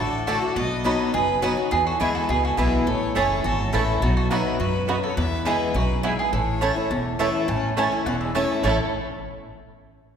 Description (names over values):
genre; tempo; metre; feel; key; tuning
bluegrass; 208 BPM; 4/4; straight; A major; A4 = 439 Hz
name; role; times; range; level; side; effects
mandolin; melody; 0.0-8.8 s; D#4 to C#6; -27 LUFS; right 3 dB; none
clear fiddle; second line; 0.0-8.8 s; G#3 to E5; -31 LUFS; left 4 dB; none
picked swing-style acoustic guitar; accompaniment; 0.0-8.8 s; E2 to F#4; -26 LUFS; left 2 dB; none
upright bass; bass; 0.0-8.8 s; E1 to F#2; -27 LUFS; equal; none
mandolin; stabs; 0.3-8.8 s; A3 to B5; -29 LUFS; right 4 dB; none
bluegrass banjo; melody; 3.2-8.8 s; A3 to A4; -31 LUFS; right 4 dB; none
room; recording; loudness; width
wet concert hall reverb, RT60 2.0 s; recorded in a church or concert hall; -20 LUFS; side -7 dB against mid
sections
0.0-7.5 A section; 7.5-8.6 B section; 8.6-9.8 C section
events
none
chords
0.0 D; 0.6 B; 1.7 E; 2.9 A; 4.0 B; 5.2 E; 6.3 A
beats
0.27 | 0.56 0.85 1.14 1.43 | 1.72 2.00 2.29 2.58 | 2.87 3.16 3.44 3.73 | 4.02 4.31 4.60 4.89 | 5.17 5.46 5.75 6.04 | 6.33 6.62 6.90 7.19 | 7.48 7.77 8.06 8.35 | 8.63